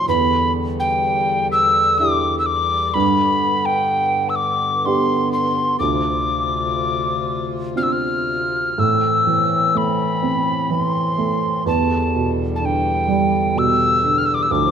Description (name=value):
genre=celtic folk, Celtic slow air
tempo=63 BPM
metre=3/4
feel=rubato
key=unclear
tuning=A4 = 440 Hz
part: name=mellow hollow wooden whistle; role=melody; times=0.0-14.7 s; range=G5 to F6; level=-18 LUFS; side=left 1 dB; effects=none
part: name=dark upright piano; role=accompaniment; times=0.0-14.7 s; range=D2 to A4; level=-22 LUFS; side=right 4 dB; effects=none
part: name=pedal harmonium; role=sustained chords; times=0.0-14.7 s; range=D2 to F4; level=-26 LUFS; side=left 3 dB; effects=none
room=moderate concert hall reverb, RT60 1.9 s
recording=minimal, uncompressed stereo recording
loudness=-16 LUFS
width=side -8 dB against mid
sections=0.0-8.8 A section; 8.8-14.7 B section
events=none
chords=0.1 Em7; 3.0 G; 5.8 Dm7; 8.8 Am; 11.7 Em7